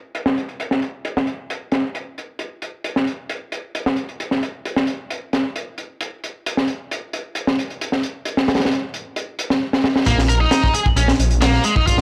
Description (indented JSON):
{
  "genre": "breakbeat, breaks",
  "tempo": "133 BPM",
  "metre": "4/4",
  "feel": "straight",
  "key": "Bb minor",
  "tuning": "A4 = 442 Hz",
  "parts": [
    { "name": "crunchy breakbeat drum kit", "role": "drums", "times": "0.1-12.0 s", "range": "hi-hat, kick drum, snare drum", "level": "-22 LUFS", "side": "equal", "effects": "low-pass filter on kick, low-pass filter on hats, low-pass filter on snare, low-pass filter on room" },
    { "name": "heavy high-gain guitar", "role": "riff", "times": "10.1-12.0 s", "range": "Ab3 to Bb4", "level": "-21 LUFS", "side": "equal", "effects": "distortion, tube saturation, vintage 12-bit sampler grit, analog delay" },
    { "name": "detuned saw bass", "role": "bass", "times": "10.1-12.0 s", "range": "Bb1", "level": "-20 LUFS", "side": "equal", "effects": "none" }
  ],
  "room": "small room ambience",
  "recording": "dry, gritty hardware recording",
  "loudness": "-21 LUFS",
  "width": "mono",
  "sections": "0.0-10.1 A section; 10.1-12.0 B section",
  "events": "drum fill 9.7-10.1; drop 10.1-12.0",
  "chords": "none"
}